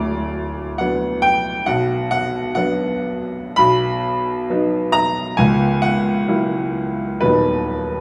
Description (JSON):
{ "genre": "classical, romantic character piece for solo piano", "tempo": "56-70 BPM", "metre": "2/4", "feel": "rubato", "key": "B minor, B major from 3.6 s", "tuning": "A4 = 437 Hz", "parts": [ { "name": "clear upright piano", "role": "solo", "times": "0.0-8.0 s", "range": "C#1 to B5", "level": "-19 LUFS", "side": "equal", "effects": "none" } ], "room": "wet recital hall reverb, RT60 1.6 s", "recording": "none", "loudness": "-19 LUFS", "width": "mono", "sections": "0.0-8.0 A section", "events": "none", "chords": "0.0 Bm/D; 1.7 Bm; 3.6 B; 5.4 F#7/C#; 7.2 B/D#" }